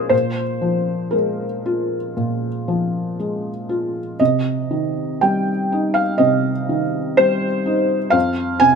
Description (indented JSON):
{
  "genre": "neoclassical minimalist piano",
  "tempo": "58-62 BPM",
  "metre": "4/4",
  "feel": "rubato",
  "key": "unclear",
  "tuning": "A4 = 440 Hz",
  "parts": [
    { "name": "felt-muted upright piano", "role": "solo", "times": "0.0-8.8 s", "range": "F2 to Ab5", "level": "-17 LUFS", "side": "equal", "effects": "none" }
  ],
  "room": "light reverb",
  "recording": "none",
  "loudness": "-17 LUFS",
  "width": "side -6 dB against mid",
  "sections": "0.0-8.8 A section",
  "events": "none",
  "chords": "0.0 Bb7(no3); 4.2 Cm; 8.1 F5",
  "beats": "| 0.12 1.15 2.18 3.19 | 4.20 5.21 6.20 7.18 | 8.15"
}